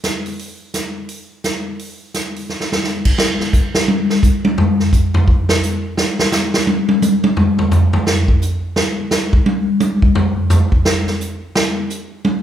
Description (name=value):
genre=jazz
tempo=172 BPM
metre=4/4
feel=swing 62% on 8ths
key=none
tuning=none
part: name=swinging big-band drum kit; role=drums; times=0.0-12.3 s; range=crash cymbal, hi-hat, kick drum, snare drum, toms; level=-14 LUFS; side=equal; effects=none
room=moderate large studio reverb, RT60 1.2 s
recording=band playing live in one room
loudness=-14 LUFS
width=side -10 dB against mid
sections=0.0-3.2 A section; 3.2-12.4 B section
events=drum fill 2.5-2.8; drum solo 3.2-12.4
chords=none